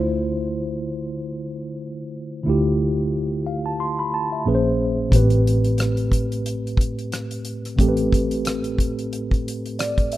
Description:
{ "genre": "R&B, neo-soul", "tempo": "90 BPM", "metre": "4/4", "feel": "swing 56% on 16ths", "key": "D dorian", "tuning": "A4 = 439 Hz", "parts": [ { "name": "mellow tine electric piano", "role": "accompaniment", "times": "0.0-10.2 s", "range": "A2 to C6", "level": "-22 LUFS", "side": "equal", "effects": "medium stereo tremolo" }, { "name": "vintage muted fingered electric bass", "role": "bass", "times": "0.0-10.2 s", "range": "A1 to D2", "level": "-25 LUFS", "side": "equal", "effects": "none" }, { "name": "damped 70s drum kit", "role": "drums", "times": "5.1-10.2 s", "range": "hi-hat, kick drum, rim click", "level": "-22 LUFS", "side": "equal", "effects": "none" } ], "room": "studio reverb", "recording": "rough home demo mix", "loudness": "-20 LUFS", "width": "side -15 dB against mid", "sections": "0.0-10.2 A section", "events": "none", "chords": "0.0 Dm9; 4.5 Bbm9; 5.1 Am9" }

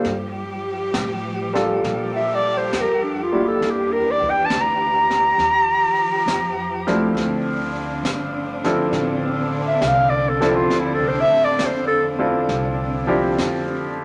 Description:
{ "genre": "jazz ballad", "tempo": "68 BPM", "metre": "4/4", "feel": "swing 68% on 8ths", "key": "D minor", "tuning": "A4 = 440 Hz", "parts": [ { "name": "warm clarinet", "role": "melody", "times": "0.0-12.1 s", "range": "D4 to Bb5", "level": "-21 LUFS", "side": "equal", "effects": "none" }, { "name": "warm concert grand piano", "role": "accompaniment", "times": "0.0-14.0 s", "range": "F3 to Bb4", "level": "-25 LUFS", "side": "equal", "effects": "none" }, { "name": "clear studio cello section", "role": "sustained chords", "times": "0.0-14.0 s", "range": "D3 to G4", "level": "-29 LUFS", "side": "equal", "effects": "none" }, { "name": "jazz brush drum kit", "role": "drums", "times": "0.0-14.0 s", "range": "brushed snare drum, hi-hat, kick drum, snare drum", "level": "-32 LUFS", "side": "equal", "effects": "none" }, { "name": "upright bass", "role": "bass", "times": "0.1-14.0 s", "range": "G1 to Bb2", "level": "-34 LUFS", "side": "equal", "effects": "none" } ], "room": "wet studio reverb, RT60 0.8 s", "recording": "none", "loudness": "-20 LUFS", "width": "mono", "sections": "0.0-14.0 A section", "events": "clarinet solo 0.0-14.0", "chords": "0.1 Gm9; 3.6 Em7b5; 5.4 Ebadd9; 7.2 Dm9" }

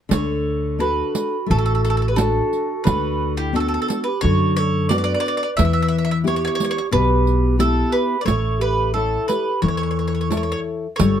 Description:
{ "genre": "italian folk, Italian serenade", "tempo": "88 BPM", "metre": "4/4", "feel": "straight", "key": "D major", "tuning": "A4 = 440 Hz", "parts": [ { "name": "bowl-back mandolin", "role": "melody", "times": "0.1-11.2 s", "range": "G4 to E5", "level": "-23 LUFS", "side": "right 1 dB", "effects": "none" }, { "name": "dark clarinet", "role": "second line", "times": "0.1-11.2 s", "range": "E4 to B4", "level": "-26 LUFS", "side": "right 7 dB", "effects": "none" }, { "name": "nylon-string guitar", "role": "accompaniment", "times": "0.1-11.2 s", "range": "B2 to C#5", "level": "-23 LUFS", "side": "left 5 dB", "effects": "none" }, { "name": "upright bass", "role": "bass", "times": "0.1-11.2 s", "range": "G1 to F#2", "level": "-21 LUFS", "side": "equal", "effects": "none" }, { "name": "riq", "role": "percussion", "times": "0.1-11.2 s", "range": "none", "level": "-23 LUFS", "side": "right 5 dB", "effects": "none" } ], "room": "light reverb", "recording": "dark, warm production", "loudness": "-17 LUFS", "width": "side -9 dB against mid", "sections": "0.1-11.2 A section", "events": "none", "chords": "0.1 D; 2.9 Bm/D; 5.6 Em; 8.3 A" }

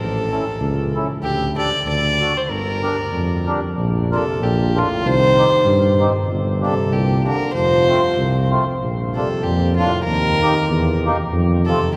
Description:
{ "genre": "alpine folk, alpine dance band", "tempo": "95 BPM", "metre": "2/4", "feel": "swing 54% on 8ths", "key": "G minor, Bb major from 3.8 s", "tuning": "A4 = 439 Hz", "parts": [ { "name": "warm fiddle", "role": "melody", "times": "0.0-11.9 s", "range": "F4 to D5", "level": "-23 LUFS", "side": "equal", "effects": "none" }, { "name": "mellow tuba", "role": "bass", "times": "0.0-12.0 s", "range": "F1 to G2", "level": "-22 LUFS", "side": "equal", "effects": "none" }, { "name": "mellow accordion", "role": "accompaniment", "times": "0.3-11.8 s", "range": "A3 to Bb4", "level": "-27 LUFS", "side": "equal", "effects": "none" }, { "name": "mellow euphonium", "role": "second line", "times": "4.1-11.9 s", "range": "A2 to F3", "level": "-27 LUFS", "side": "equal", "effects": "none" } ], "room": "wet cathedral reverb, RT60 6.4 s", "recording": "recorded in a church or concert hall", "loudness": "-18 LUFS", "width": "mono", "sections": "0.0-3.8 A section; 3.8-12.0 B section", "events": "none", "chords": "0.0 A; 1.2 Dsus4; 1.9 D; 2.5 Gm; 3.8 Bb; 5.0 Cm; 6.3 Gm; 7.5 F; 8.8 Bb; 10.1 Eb; 11.3 F" }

